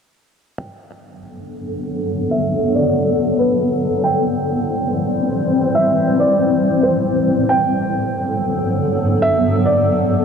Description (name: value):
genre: hip hop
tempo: 139 BPM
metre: 4/4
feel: half-time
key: G major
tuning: A4 = 440 Hz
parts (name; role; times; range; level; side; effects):
- felt-muted upright piano; melody; 0.6-10.2 s; B4 to G5; -20 LUFS; right 1 dB; low-pass filter, digital delay
- granular cloud pad; sustained chords; 1.4-10.2 s; G2 to C5; -16 LUFS; left 1 dB; built-in reverb, low-pass filter
room: moderate huge ambient reverb, RT60 6.7 s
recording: none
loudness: -15 LUFS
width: side -6 dB against mid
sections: 0.6-10.2 A section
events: filter sweep 0.6-10.2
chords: 0.6 Gmaj7; 4.0 Am7; 7.5 Gmaj7